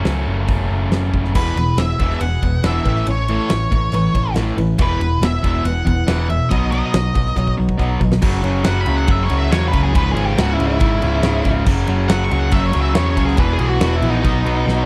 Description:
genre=classic rock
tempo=140 BPM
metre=4/4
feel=straight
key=unclear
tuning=A4 = 440 Hz
part: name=distorted electric guitar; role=riff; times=0.0-14.9 s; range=C#2 to F#4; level=-24 LUFS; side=equal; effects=overdrive
part: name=huge arena drum kit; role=drums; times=0.0-14.8 s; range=crash cymbal, hi-hat, kick drum, ride cymbal, snare drum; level=-23 LUFS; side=equal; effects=none
part: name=picked electric bass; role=bass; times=0.1-14.8 s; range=C#1 to E2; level=-22 LUFS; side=equal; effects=none
part: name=picked swing-style acoustic guitar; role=accompaniment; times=1.3-8.2 s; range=B2 to B4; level=-32 LUFS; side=equal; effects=none
part: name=octave-fuzz lead guitar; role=melody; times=1.4-14.9 s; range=D#4 to C#6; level=-25 LUFS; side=equal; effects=distortion, slapback echo
part: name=overdriven electric guitar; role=riff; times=8.2-14.9 s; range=C#2 to B3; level=-27 LUFS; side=equal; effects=none
room=little or no reverb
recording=dry, close 1970s-style studio recording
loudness=-17 LUFS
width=mono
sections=0.0-1.4 A section; 1.4-8.2 B section; 8.2-14.9 C section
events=drum fill 7.4-8.2, 14.7; lead electric guitar solo 8.2-14.9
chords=0.0 F#m; 1.4 E; 2.9 Aadd9; 4.8 E; 6.5 B; 8.2 F#5; 10.0 C#m; 11.7 F#5; 13.4 E5; 14.2 B

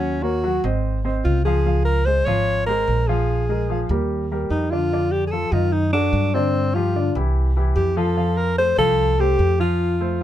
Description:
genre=Afro-Cuban jazz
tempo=147 BPM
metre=4/4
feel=straight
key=unclear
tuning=A4 = 440 Hz
part: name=warm alto saxophone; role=melody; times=0.0-10.2 s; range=C4 to Db5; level=-21 LUFS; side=equal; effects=none
part: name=warm baby grand piano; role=accompaniment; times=0.0-10.2 s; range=D3 to Gb5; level=-25 LUFS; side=left 2 dB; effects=none
part: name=upright bass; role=bass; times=0.0-10.2 s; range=Ab1 to G2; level=-21 LUFS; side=equal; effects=none
room=little or no reverb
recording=close, detailed microphones, faint mains hum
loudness=-18 LUFS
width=side -12 dB against mid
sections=0.0-10.2 A section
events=none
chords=0.0 Ebm7; 0.8 Ab; 1.7 Dbmaj7; 3.3 Bb5; 4.1 Ebadd9; 4.9 F6; 5.7 D7b9/F#; 6.5 G5; 7.4 C; 8.2 F

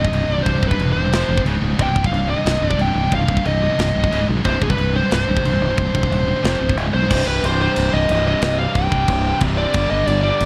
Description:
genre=heavy metal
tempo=180 BPM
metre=4/4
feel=straight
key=C minor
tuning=A4 = 439 Hz
part: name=high-gain lead guitar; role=melody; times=0.0-10.5 s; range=Ab4 to G5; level=-24 LUFS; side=equal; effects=distortion
part: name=heavy high-gain guitar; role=riff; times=0.0-7.1 s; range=C2 to F3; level=-31 LUFS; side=equal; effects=distortion
part: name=scooped high-gain guitar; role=riff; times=0.0-10.5 s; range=C2 to G3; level=-28 LUFS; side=equal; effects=none
part: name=tight distorted guitar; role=riff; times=0.0-10.5 s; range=C2 to G3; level=-26 LUFS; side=equal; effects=distortion
part: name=fingered electric bass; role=bass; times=0.0-10.5 s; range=C1 to B1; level=-24 LUFS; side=equal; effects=none
part: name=tight metal drum kit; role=drums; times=0.0-10.5 s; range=china cymbal, crash cymbal, kick drum, snare drum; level=-26 LUFS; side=equal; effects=none
room=studio ambience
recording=vinyl crackle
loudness=-18 LUFS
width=mono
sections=0.0-7.1 A section; 7.1-10.5 B section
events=half time 7.1-10.5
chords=0.0 Cm; 1.1 F5; 1.5 Db5; 1.8 Cm; 4.1 Db5; 4.5 C5; 6.4 F5; 6.8 Db5; 7.1 Cm; 9.7 G5

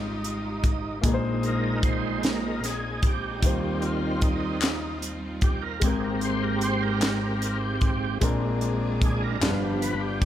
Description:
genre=slow gospel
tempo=50 BPM (dotted quarters)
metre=6/8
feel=straight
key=Eb major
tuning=A4 = 441 Hz
part: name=warm concert grand piano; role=accompaniment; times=0.0-10.2 s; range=G1 to Eb5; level=-29 LUFS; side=left 2 dB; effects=none
part: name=clear studio string section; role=sustained chords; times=0.0-10.2 s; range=G3 to Ab4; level=-37 LUFS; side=right 2 dB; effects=none
part: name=overdriven tonewheel organ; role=sustained chords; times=0.0-10.2 s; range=G2 to C5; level=-28 LUFS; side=right 2 dB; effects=slow rotary speaker, chorus vibrato
part: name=crisp fusion drum kit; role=drums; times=0.2-10.2 s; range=hi-hat, kick drum, snare drum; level=-26 LUFS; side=equal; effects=none
part: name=group handclap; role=percussion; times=4.6-9.8 s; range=none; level=-31 LUFS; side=left 8 dB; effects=none
room=light reverb, small room ambience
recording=none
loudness=-23 LUFS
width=side -11 dB against mid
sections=0.0-10.2 A section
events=tonewheel organ solo 0.0-10.2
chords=0.0 Fm9/Ab; 1.0 Bb9sus4; 3.4 Eb69; 5.8 Abmaj9; 8.2 Bb9; 9.4 G7

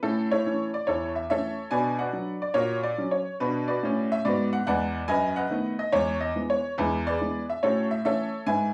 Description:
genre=jazz, stride piano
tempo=142 BPM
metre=4/4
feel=swing 63% on 8ths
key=E major from 5.1 s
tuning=A4 = 442 Hz
part: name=clear upright piano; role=solo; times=0.0-8.7 s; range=E2 to G#5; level=-27 LUFS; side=equal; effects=none
room=wet club reverb, RT60 0.6 s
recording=small room ambience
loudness=-27 LUFS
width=mono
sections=0.0-8.7 A section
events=none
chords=0.0 A; 1.7 Bm; 2.6 F#/A#; 3.4 Bm; 5.1 B7/F#; 5.9 E; 7.6 A6

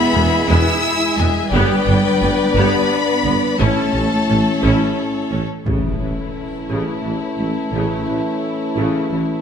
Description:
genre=cinematic, epic orchestral film score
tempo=58 BPM (dotted quarters)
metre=6/8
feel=straight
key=A major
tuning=A4 = 438 Hz
part: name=warm symphonic violin section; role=melody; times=0.0-9.4 s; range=C#5 to E6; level=-24 LUFS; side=left 4 dB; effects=none
part: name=rich studio violin section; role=second line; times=0.0-9.4 s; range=E4 to E5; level=-24 LUFS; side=left 5 dB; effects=none
part: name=mellow French horn section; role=sustained chords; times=0.0-9.4 s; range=G#3 to E4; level=-24 LUFS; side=left 2 dB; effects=none
part: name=warm studio cello section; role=bass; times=0.0-9.2 s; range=A2 to E4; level=-23 LUFS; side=right 2 dB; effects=none
part: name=clear symphonic viola section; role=accompaniment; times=0.1-9.2 s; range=C#3 to G4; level=-24 LUFS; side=equal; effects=none
part: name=rich symphonic double bass section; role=bass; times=0.1-8.0 s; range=G1 to E2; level=-21 LUFS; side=right 2 dB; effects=none
part: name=warm tuba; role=bass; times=0.1-9.2 s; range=E1 to A1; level=-24 LUFS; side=right 2 dB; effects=none
part: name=clear trombone section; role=sustained chords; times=5.7-9.4 s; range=E3 to A3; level=-26 LUFS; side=right 1 dB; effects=none
part: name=impact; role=sound effects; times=5.7-7.7 s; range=none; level=-28 LUFS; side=left 1 dB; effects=none
room=wet scoring stage reverb, RT60 1.5 s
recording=none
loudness=-15 LUFS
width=side -7 dB against mid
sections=0.0-5.7 A section; 5.7-9.4 B section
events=impact 5.7-7.7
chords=0.0 E; 1.5 G; 3.6 A

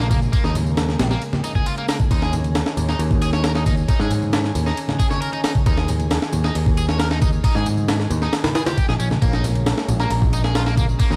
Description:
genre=breakbeat, breaks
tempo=135 BPM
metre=4/4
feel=straight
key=unclear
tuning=A4 = 440 Hz
part: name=tonewheel organ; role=sustained chords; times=0.0-11.2 s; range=Db3 to Ab4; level=-32 LUFS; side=equal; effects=chorus vibrato, lush chorus, sidechain pumping
part: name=biting overdriven guitar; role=riff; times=0.0-11.2 s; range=Bb3 to Db5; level=-31 LUFS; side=equal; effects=vintage 12-bit sampler grit, digital delay
part: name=picked electric bass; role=bass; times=0.0-11.2 s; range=Bb1 to Ab2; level=-23 LUFS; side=equal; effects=none
part: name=breakbeat sampler-style drum kit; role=drums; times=0.0-11.2 s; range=hi-hat, kick drum, ride cymbal, snare drum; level=-23 LUFS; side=equal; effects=none
part: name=tambourine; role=drums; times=0.0-11.2 s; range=none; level=-42 LUFS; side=equal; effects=overdrive
part: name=congas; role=percussion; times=0.1-10.9 s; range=none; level=-31 LUFS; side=equal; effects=none
part: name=soft synth bell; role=melody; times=10.0-10.2 s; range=Bb5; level=-33 LUFS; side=equal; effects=chorus, small speaker sound, digital delay
room=little or no reverb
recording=vinyl crackle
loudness=-20 LUFS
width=mono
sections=0.0-11.2 A section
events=none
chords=0.0 Bbm7; 2.1 Eb7sus4; 9.2 Bbm7

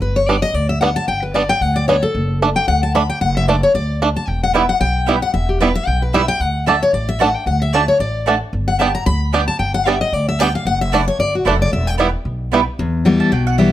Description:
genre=bluegrass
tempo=225 BPM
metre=4/4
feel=swing 56% on 8ths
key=E dorian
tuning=A4 = 440 Hz
part: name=picked steel-string acoustic guitar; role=accompaniment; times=0.0-13.7 s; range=E2 to B5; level=-17 LUFS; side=left 3 dB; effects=none
part: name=upright bass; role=bass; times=0.0-13.7 s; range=E1 to E2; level=-20 LUFS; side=equal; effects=none
part: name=bluegrass banjo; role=arpeggios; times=0.3-12.6 s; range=G3 to E4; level=-18 LUFS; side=right 4 dB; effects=none
part: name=mandolin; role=stabs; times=4.5-13.7 s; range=A3 to A5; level=-20 LUFS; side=right 6 dB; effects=none
room=light reverb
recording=close, detailed microphones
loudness=-14 LUFS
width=side -13 dB against mid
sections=0.0-12.8 A section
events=steel-string acoustic guitar solo 0.0-12.8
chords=0.0 G; 2.1 D/F#; 4.3 Em; 6.4 D; 8.5 G; 10.7 Dadd9/F#; 11.7 Em

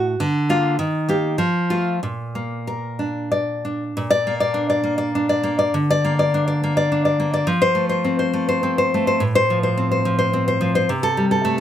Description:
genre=romantic piece for solo classical guitar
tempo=91-110 BPM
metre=3/4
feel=rubato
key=Bb major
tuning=A4 = 440 Hz
part: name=nylon-string guitar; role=solo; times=0.0-11.6 s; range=A2 to D5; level=-18 LUFS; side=left 1 dB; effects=none
room=light reverb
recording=close, detailed microphones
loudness=-18 LUFS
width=side -10 dB against mid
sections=0.0-3.9 A section; 3.9-11.6 B section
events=none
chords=0.2 Bb/D; 0.8 Eb; 1.4 F; 2.0 Bb; 5.7 Bb/D; 7.5 F; 9.2 F/A; 10.9 Am7/C

